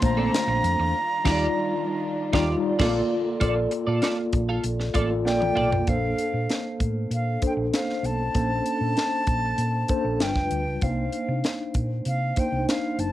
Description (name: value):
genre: polished 1980s jazz-funk pop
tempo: 97 BPM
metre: 4/4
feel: straight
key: Bb major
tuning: A4 = 440 Hz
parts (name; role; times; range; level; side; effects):
- breathy silver concert flute; melody; 0.0-13.1 s; F5 to Bb5; -28 LUFS; equal; cassette tape, plate reverb
- mellow tine electric piano; accompaniment; 0.0-13.1 s; G3 to D5; -26 LUFS; left 1 dB; medium stereo tremolo, analog chorus, cassette tape, plate reverb
- dark studio string section; sustained chords; 0.0-3.4 s; D3 to F4; -36 LUFS; right 1 dB; cassette tape, plate reverb
- twelve-string electric guitar; riff; 0.0-5.8 s; C4 to F5; -30 LUFS; right 3 dB; analog chorus, cassette tape
- hollow-body short-scale fingered electric bass; bass; 0.0-13.1 s; F1 to C3; -27 LUFS; equal; none
- tight funk drum kit; drums; 0.0-13.1 s; crash cymbal, hi-hat, kick drum, snare drum, toms; -26 LUFS; equal; cassette tape
room: moderate small room reverb, RT60 0.6 s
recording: home recording on cassette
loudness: -22 LUFS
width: side -14 dB against mid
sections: 0.0-3.4 A section; 3.4-5.9 B section; 5.9-13.1 C section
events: band accent 0.9-3.4; drum fill 5.3-5.9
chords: 0.0 Bbmaj9; 0.9 Ebmaj9; 2.8 Bbmaj7; 5.9 Bbmaj9; 10.2 G7; 10.8 Cm9